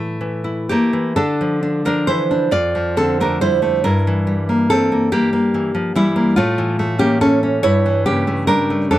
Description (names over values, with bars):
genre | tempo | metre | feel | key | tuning
romantic piece for solo classical guitar | 40-49 BPM (dotted quarters) | 6/8 | rubato | D minor | A4 = 442 Hz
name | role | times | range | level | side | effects
nylon-string guitar | solo | 0.0-9.0 s | F2 to D5 | -15 LUFS | equal | none
room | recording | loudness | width
light reverb | dry, close 1970s-style studio recording | -15 LUFS | side -14 dB against mid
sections
0.0-1.2 A section; 1.2-9.0 B section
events
none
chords
0.0 A; 1.2 Dm; 2.5 Dm/F; 3.9 Edim/G; 6.4 A; 7.7 A7/G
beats
| 1.17 2.52 | 3.85 5.15 | 6.40 7.65 | 8.89